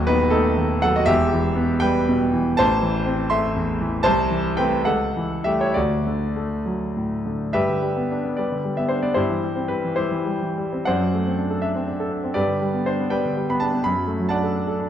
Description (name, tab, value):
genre	classical, romantic character piece for solo piano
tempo	64-84 BPM (dotted quarters)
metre	6/8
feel	rubato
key	G major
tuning	A4 = 440 Hz
part	clear concert grand piano	solo	0.0-14.9 s	D#1 to C6	-19 LUFS	equal	none
room	moderate recital hall reverb, RT60 1.8 s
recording	dark, warm production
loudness	-19 LUFS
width	side -10 dB against mid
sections	0.0-7.6 A section; 7.6-14.9 B section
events	none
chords	0.0 B7/D#; 1.1 Em; 2.6 Am; 4.1 Am/C; 4.9 A7/C#; 5.8 D; 7.6 G; 9.2 C/G; 10.9 D7/F#; 12.4 G; 13.8 D/F#